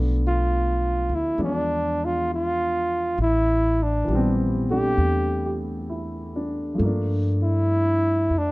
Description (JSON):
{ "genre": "jazz ballad", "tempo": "67 BPM", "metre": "4/4", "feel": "swing 68% on 8ths", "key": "unclear", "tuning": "A4 = 440 Hz", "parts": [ { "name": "dark upright piano", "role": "accompaniment", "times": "0.0-8.5 s", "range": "E3 to G4", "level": "-27 LUFS", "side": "equal", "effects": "none" }, { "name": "upright bass", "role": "bass", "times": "0.0-8.5 s", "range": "A1 to G2", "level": "-25 LUFS", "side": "equal", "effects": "none" }, { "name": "mellow flugelhorn", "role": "melody", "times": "0.3-8.5 s", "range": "D4 to G4", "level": "-23 LUFS", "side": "equal", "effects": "none" } ], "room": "light reverb", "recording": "dark, warm production", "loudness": "-20 LUFS", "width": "side -21 dB against mid", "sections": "0.0-8.5 A section", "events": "none", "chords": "0.0 Bm7b5; 1.4 E7b9; 3.2 Am9; 6.8 Gm7" }